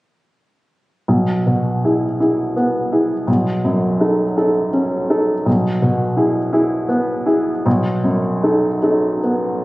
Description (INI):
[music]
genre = classical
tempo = 55 BPM (dotted quarters)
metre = 6/8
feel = uneven beats, rubato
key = E major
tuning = A4 = 436 Hz
[part]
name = warm grand piano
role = accompaniment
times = 1.1-9.6 s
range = B1 to A4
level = -15 LUFS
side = equal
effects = none
[sound]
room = moderate recital hall reverb, RT60 1.4 s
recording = recorded on a phone in the room, studio reverb, compression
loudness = -15 LUFS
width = side -19 dB against mid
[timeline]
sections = 1.1-9.6 A section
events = none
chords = 1.1 E/B; 3.3 B9; 5.5 E/B; 7.7 B7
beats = | 1.07 2.19 | 3.28 4.36 | 5.47 6.53 | 7.65 8.81